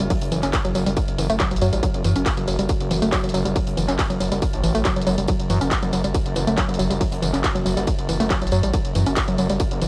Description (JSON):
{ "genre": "driving peak-time techno", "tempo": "139 BPM", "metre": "4/4", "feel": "straight", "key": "F# phrygian", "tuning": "A4 = 440 Hz", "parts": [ { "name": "woody wave-folded pluck", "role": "riff", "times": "0.0-9.9 s", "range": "E3 to C#4", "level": "-26 LUFS", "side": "equal", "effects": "chorus, tube saturation, sidechain pumping, cassette tape, analog delay" }, { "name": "gritty driven synth bass", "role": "bass", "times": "0.0-9.9 s", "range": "F#1 to F#2", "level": "-26 LUFS", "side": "equal", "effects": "sidechain pumping" }, { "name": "metallic inharmonic drone", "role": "drone", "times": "0.0-9.9 s", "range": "F#3", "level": "-35 LUFS", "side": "equal", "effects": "chorus, built-in reverb, sidechain pumping, cassette tape" }, { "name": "techno drum kit", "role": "drums", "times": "0.0-9.9 s", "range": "handclaps, hi-hat, ride cymbal, tambourine", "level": "-31 LUFS", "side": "equal", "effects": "sidechain pumping on hats, cassette tape, sidechain pumping on cymbals, sidechain pumping on perc" }, { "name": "electronic kick drum", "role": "drums", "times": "0.1-9.7 s", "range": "none", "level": "-27 LUFS", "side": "equal", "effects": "distortion, cassette tape" }, { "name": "jazz brush drum kit", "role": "drums", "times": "0.1-9.9 s", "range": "hi-hat, snare drum, tambourine", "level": "-43 LUFS", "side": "equal", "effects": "none" } ], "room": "light reverb", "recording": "home recording on cassette", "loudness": "-21 LUFS", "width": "mono", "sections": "0.0-9.9 A section", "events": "none", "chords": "0.0 F#5" }